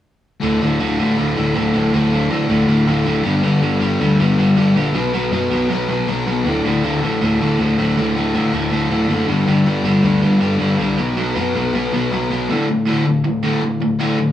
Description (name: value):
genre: punk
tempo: 159 BPM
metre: 4/4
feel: straight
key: D major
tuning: A4 = 439 Hz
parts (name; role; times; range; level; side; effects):
- cranked stack guitar; riff; 0.4-14.3 s; D2 to B3; -18 LUFS; left 3 dB; overdrive
- overdriven electric guitar; riff; 0.4-14.3 s; D2 to B3; -20 LUFS; right 4 dB; none
- fuzz picked electric bass; bass; 0.4-12.5 s; D1 to F#2; -21 LUFS; equal; overdrive
room: moderate large studio reverb, RT60 1.0 s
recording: band playing live in one room, small room ambience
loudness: -15 LUFS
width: side -11 dB against mid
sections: 0.4-12.5 A section; 12.5-14.3 B section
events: none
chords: 0.4 D5; 3.2 G5; 4.9 B5; 6.4 D5; 9.3 G5; 11.0 B5; 12.5 D5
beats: | 0.42 0.79 1.17 1.54 | 1.92 2.29 2.67 3.04 | 3.42 3.80 4.17 4.55 | 4.93 5.31 5.69 6.07 | 6.44 6.82 7.20 7.58 | 7.96 8.34 8.71 9.09 | 9.47 9.85 10.23 10.61 | 10.98 11.36 11.74 12.12 | 12.50 12.87 13.25 13.63 | 14.01